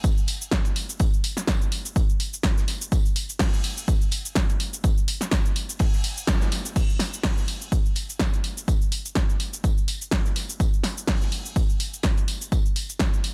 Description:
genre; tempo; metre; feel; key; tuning
house; 125 BPM; 4/4; swing 56% on 16ths; none; none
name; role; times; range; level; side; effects
damped 70s drum kit; drums; 0.0-13.3 s; hi-hat, snare drum, tambourine; -41 LUFS; equal; high-pass filter on hats, high-pass filter on snare, high-pass filter on perc, high-pass filter on room
electronic kick drum; drums; 0.0-13.1 s; none; -25 LUFS; equal; none
punchy analog drum machine; drums; 0.0-13.3 s; cabasa, crash cymbal, hi-hat, snare drum; -30 LUFS; equal; none
room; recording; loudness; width
little or no reverb; none; -25 LUFS; mono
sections
0.0-6.8 A section; 6.8-13.3 B section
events
drop 0.0-6.8; band accent 6.3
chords
none

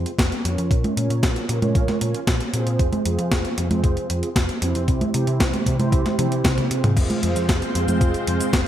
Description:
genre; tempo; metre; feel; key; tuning
italo disco; 115 BPM; 4/4; straight; F harmonic minor; A4 = 439 Hz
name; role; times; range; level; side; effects
mellow synth brass; stabs; 0.0-8.5 s; C4 to Db5; -26 LUFS; right 2 dB; chorus, vintage 12-bit sampler grit, digital delay
hollow-body short-scale picked electric bass; bass; 0.0-8.6 s; F1 to C3; -24 LUFS; equal; none
clean 12-bit digital drum machine; drums; 0.1-8.6 s; cabasa, congas, crash cymbal, hi-hat, snare drum, toms; -23 LUFS; equal; overdrive, gated reverb
electronic kick drum; drums; 0.2-8.6 s; none; -21 LUFS; equal; overdrive
string machine, full ensemble; sustained chords; 7.0-8.7 s; Ab3 to F5; -25 LUFS; equal; ensemble chorus
room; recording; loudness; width
moderate lush hall reverb, RT60 1.7 s; bright 1980s-style digital production; -19 LUFS; side -11 dB against mid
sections
0.0-8.7 A section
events
drum fill 6.2-7.0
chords
0.0 Fm; 0.7 Bbm; 2.8 Fm; 4.9 C; 7.0 Fm

